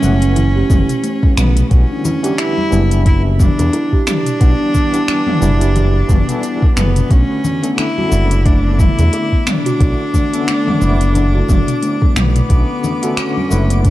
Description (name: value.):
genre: organic downtempo.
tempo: 89 BPM.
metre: 4/4.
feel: swing 57% on 16ths.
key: B minor.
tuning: A4 = 438 Hz.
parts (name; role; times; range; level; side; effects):
warm cello; melody; 0.0-13.9 s; B3 to E4; -19 LUFS; right 1 dB; tape echo.
tine electric piano; accompaniment; 0.0-13.9 s; D3 to F#5; -23 LUFS; left 1 dB; medium tremolo, sidechain pumping.
smooth synth bass; bass; 0.0-13.9 s; F#1 to E2; -14 LUFS; equal; none.
organic electronic drum kit; drums; 0.0-13.9 s; cabasa, finger snaps, hi-hat, toms; -20 LUFS; left 1 dB; none.
congas and bongos; percussion; 0.0-13.7 s; none; -25 LUFS; left 3 dB; none.
steel tongue drum; arpeggios; 0.2-13.9 s; A3 to G4; -22 LUFS; equal; none.
electronic kick drum; drums; 0.7-13.9 s; none; -13 LUFS; equal; none.
twinkling granular texture; texture; 8.0-13.9 s; D6; -31 LUFS; left 1 dB; built-in reverb.
room: digital ambience.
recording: dark, warm production.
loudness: -12 LUFS.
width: side -15 dB against mid.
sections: 0.0-13.9 A section.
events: none.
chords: 0.0 A7; 1.7 Em7; 7.1 Bm7.